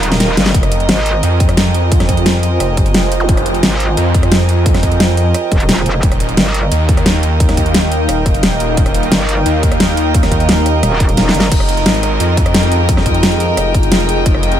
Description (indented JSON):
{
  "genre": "dark technical drum and bass",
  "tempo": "175 BPM",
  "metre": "4/4",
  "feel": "straight",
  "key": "F minor",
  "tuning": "A4 = 440 Hz",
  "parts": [
    { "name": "dark analog pad", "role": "sustained chords", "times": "0.0-14.6 s", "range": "Eb4 to Ab5", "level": "-21 LUFS", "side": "equal", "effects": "chorus, sidechain pumping" },
    { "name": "metallic wobble bass", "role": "bass", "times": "0.0-1.2, 3.6-6.7, 9.1-11.5 s", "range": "Eb1 to Ab1", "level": "-15 LUFS", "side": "equal", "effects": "chorus, tube saturation" },
    { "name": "dubstep drum kit", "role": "drums", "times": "0.0-14.6 s", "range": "crash cymbal, hi-hat, rim click, snare drum", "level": "-16 LUFS", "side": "equal", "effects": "studio reverb" },
    { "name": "rich chamber string section", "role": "texture", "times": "0.0-14.6 s", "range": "Bb4 to G5", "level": "-20 LUFS", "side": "right 3 dB", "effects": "sidechain pumping" },
    { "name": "wide detuned saw bass", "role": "bass", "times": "0.5-14.6 s", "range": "Eb1 to F2", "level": "-15 LUFS", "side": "equal", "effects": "chorus, tube saturation" },
    { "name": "electronic kick drum", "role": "drums", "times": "0.5-14.3 s", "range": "none", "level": "-15 LUFS", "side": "equal", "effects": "studio reverb" },
    { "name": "zap", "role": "sound effects", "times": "3.2-3.3 s", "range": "none", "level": "-23 LUFS", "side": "right 1 dB", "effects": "none" }
  ],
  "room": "light reverb",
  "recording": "none",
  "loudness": "-10 LUFS",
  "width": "side -10 dB against mid",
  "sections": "0.0-11.5 A section; 11.5-14.6 A section",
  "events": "break 0.0-0.5; drop 0.0-11.5, 11.5-14.6; drum fill 0.0-0.5, 11.2-11.5",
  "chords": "0.0 Ebadd9; 0.5 Fm7; 6.0 Ebadd9; 11.5 Fm7"
}